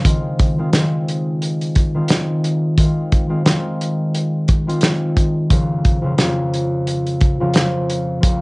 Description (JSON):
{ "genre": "hip hop, boom-bap hip-hop", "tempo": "88 BPM", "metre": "4/4", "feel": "swing 57% on 16ths", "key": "F minor", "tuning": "A4 = 440 Hz", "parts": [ { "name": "concert harp", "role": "accompaniment", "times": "0.0-8.4 s", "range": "F2 to F4", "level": "-18 LUFS", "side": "equal", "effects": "cassette tape" }, { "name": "warm soul drum kit", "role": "drums", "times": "0.1-8.4 s", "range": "hi-hat, kick drum, snare drum", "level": "-16 LUFS", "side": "equal", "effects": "cassette tape" } ], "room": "light reverb", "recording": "home recording on cassette, nothing above 10.4 kHz", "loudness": "-15 LUFS", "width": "side -26 dB against mid", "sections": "0.0-8.4 A section", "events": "none", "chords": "0.0 Fm7; 5.5 Bbm/F" }